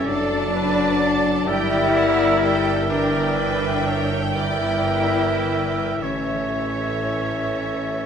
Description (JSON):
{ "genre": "classical, slow romantic movement for symphony orchestra", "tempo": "33-44 BPM (dotted quarters)", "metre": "6/8", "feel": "rubato", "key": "unclear", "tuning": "A4 = 439 Hz", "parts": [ { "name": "rich studio violin section", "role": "melody", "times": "0.0-8.1 s", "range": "E5 to A5", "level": "-28 LUFS", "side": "left 2 dB", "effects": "none" }, { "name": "bright clarinet", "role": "second line", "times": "0.0-8.1 s", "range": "A4 to Bb4", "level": "-32 LUFS", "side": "equal", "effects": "none" }, { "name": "clear oboe", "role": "second line", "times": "0.0-8.1 s", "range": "C#5 to E5", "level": "-29 LUFS", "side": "right 2 dB", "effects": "none" }, { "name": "rich studio violin section", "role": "second line", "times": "0.0-8.1 s", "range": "G4 to D5", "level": "-32 LUFS", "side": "left 1 dB", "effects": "none" }, { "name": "mellow bassoon", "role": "accompaniment", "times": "0.0-8.1 s", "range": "E3 to G3", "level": "-29 LUFS", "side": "right 3 dB", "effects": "none" }, { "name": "rich studio viola section", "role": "accompaniment", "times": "0.0-8.1 s", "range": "A4 to E5", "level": "-32 LUFS", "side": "right 3 dB", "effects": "none" }, { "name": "mellow French horn section", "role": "sustained chords", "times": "0.0-8.1 s", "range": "C#4 to E4", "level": "-24 LUFS", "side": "left 5 dB", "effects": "none" }, { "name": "concert harp", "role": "arpeggios", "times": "0.0-8.1 s", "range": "F#2 to E6", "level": "-32 LUFS", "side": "left 7 dB", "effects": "none" }, { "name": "clear studio double bass section", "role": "bass", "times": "0.0-8.1 s", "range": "F#1 to A1", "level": "-28 LUFS", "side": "right 5 dB", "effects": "none" }, { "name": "rich studio cello section", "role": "bass", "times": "0.0-8.1 s", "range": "C#4 to E4", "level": "-28 LUFS", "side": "right 3 dB", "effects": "none" }, { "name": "mellow concert flute", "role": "second line", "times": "0.1-8.1 s", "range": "D5 to E5", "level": "-31 LUFS", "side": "equal", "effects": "none" } ], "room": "wet recital hall reverb, RT60 1.3 s", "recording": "none", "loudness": "-18 LUFS", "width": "side -7 dB against mid", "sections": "0.0-8.1 A section", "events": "none", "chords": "0.1 D/F#; 1.5 Gm; 2.9 Em7b5/G; 6.0 A", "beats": "| 0.08 1.47 | 2.89 4.36 | 6.02 7.75" }